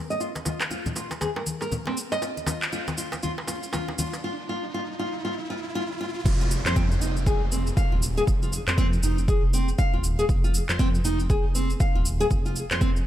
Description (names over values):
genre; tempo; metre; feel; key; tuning
afro house; 119 BPM; 4/4; swing 60% on 16ths; F minor; A4 = 440 Hz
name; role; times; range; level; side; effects
riser and downlifter; sound effects; 1.8-10.3 s; none; -37 LUFS; right 1 dB; none
nylon-string guitar; arpeggios; 0.1-12.9 s; C4 to F5; -29 LUFS; equal; sidechain pumping, low-pass filter, digital delay
afro-pop drum kit; drums; 0.1-13.0 s; cabasa, crash cymbal, handclaps, toms; -31 LUFS; equal; high-pass filter on snare, high-pass filter on perc, high-pass filter on toms, high-pass filter on cymbals
dark detuned saw bass; bass; 0.2-13.0 s; Eb1 to F2; -28 LUFS; equal; sidechain pumping, high-pass filter
congas; percussion; 0.4-4.1 s; none; -32 LUFS; left 3 dB; none
darbuka; percussion; 0.4-4.2 s; none; -36 LUFS; right 2 dB; none
electronic kick drum; drums; 6.3-12.9 s; none; -24 LUFS; equal; none
room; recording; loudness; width
little or no reverb; none; -23 LUFS; side -13 dB against mid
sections
0.0-6.3 A section; 6.3-13.1 B section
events
build-up 0.0-6.3; filter sweep on nylon-string guitar 0.0-6.3; riser 1.8-6.3; drum fill 5.8-6.3; drop 6.3-13.1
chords
0.0 N.C.; 6.3 F7(no3)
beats
| 0.21 0.71 1.21 1.72 | 2.22 2.73 3.23 3.73 | 4.24 4.74 5.25 5.75 | 6.26 6.76 7.26 7.77 | 8.27 8.78 9.28 9.79 | 10.29 10.79 11.30 11.80 | 12.31 12.81